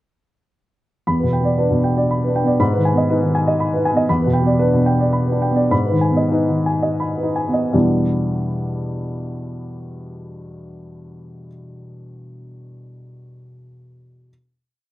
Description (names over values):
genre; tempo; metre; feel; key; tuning
neoclassical minimalist piano; 81-123 BPM; 3/4; rubato; E minor; A4 = 442 Hz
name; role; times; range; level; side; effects
dark baby grand piano; solo; 1.1-14.3 s; E2 to B5; -17 LUFS; equal; none
room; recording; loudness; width
little or no reverb; recorded outdoors, with no room sound; -16 LUFS; side -16 dB against mid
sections
1.1-7.7 A section; 7.7-12.1 final chord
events
slowing down 3.3-7.7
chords
1.1 Em7; 2.6 G#m; 4.1 Em7; 5.7 G#m; 7.7 Em7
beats
| 1.07 1.58 2.09 | 2.60 3.10 3.59 | 4.08 4.58 5.12 | 5.71 6.34 7.01 | 7.73 8.45 9.18 | 9.91 10.64 11.35